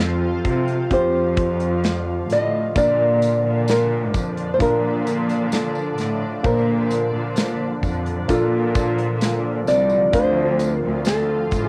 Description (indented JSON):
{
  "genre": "pop ballad",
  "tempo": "65 BPM",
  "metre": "4/4",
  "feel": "straight",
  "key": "Bb major",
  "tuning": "A4 = 440 Hz",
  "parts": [
    { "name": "nylon-string guitar", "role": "melody", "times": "0.0-11.7 s", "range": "F4 to Eb5", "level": "-24 LUFS", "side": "equal", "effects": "cassette tape" },
    { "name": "dark concert grand piano", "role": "accompaniment", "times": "0.0-11.7 s", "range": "Bb2 to C5", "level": "-29 LUFS", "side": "equal", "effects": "cassette tape" },
    { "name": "shimmering ambient pad", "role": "sustained chords", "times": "0.0-11.7 s", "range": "D3 to F4", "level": "-30 LUFS", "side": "equal", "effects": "chorus, built-in reverb, cassette tape" },
    { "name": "clear symphonic cello section", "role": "bass", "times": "0.0-11.7 s", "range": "C2 to C3", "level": "-26 LUFS", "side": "equal", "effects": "none" },
    { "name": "modern studio drum kit", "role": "drums", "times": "0.4-11.7 s", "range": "hi-hat, kick drum, snare drum", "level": "-26 LUFS", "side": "equal", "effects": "none" },
    { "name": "tambourine", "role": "percussion", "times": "2.8-11.7 s", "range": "none", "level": "-43 LUFS", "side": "equal", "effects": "none" }
  ],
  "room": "moderate studio reverb, RT60 0.6 s",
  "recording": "home recording on cassette",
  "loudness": "-20 LUFS",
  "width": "mono",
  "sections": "0.0-11.7 A section",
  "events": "none",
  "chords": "0.0 F; 2.8 Bbmaj7; 10.1 Dm7"
}